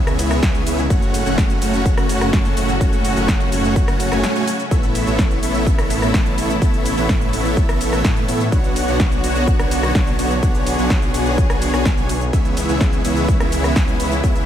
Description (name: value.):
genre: EDM, festival progressive house.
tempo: 126 BPM.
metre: 4/4.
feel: straight.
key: F# minor.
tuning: A4 = 440 Hz.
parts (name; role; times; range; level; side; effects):
rich studio string section; sustained chords; 0.0-14.5 s; A2 to C#5; -24 LUFS; equal; sidechain pumping.
dense compressed supersaw; riff; 0.0-14.5 s; A3 to A5; -21 LUFS; equal; sidechain pumping, ping-pong delay.
wide detuned saw bass; bass; 0.0-14.5 s; F#1 to A2; -23 LUFS; equal; chorus, sidechain pumping.
big-room dance drum kit; drums; 0.1-14.5 s; hi-hat, ride cymbal, rim click, shaker, snare drum; -25 LUFS; equal; overdrive.
electronic kick drum; drums; 0.4-14.3 s; none; -18 LUFS; equal; none.
room: light reverb.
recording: none.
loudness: -15 LUFS.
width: side -10 dB against mid.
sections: 0.0-14.5 A section.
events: break 4.2-4.7.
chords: 0.0 C#m7; 0.9 F#m; 4.7 Aadd9; 8.5 Bmadd9; 12.3 C#m7.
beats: 0.43 | 0.90 1.38 1.86 2.33 | 2.81 3.29 3.76 4.24 | 4.71 5.19 5.67 6.14 | 6.62 7.09 7.57 8.05 | 8.52 9.00 9.47 9.95 | 10.43 10.90 11.38 11.86 | 12.33 12.81 13.29 13.76 | 14.24.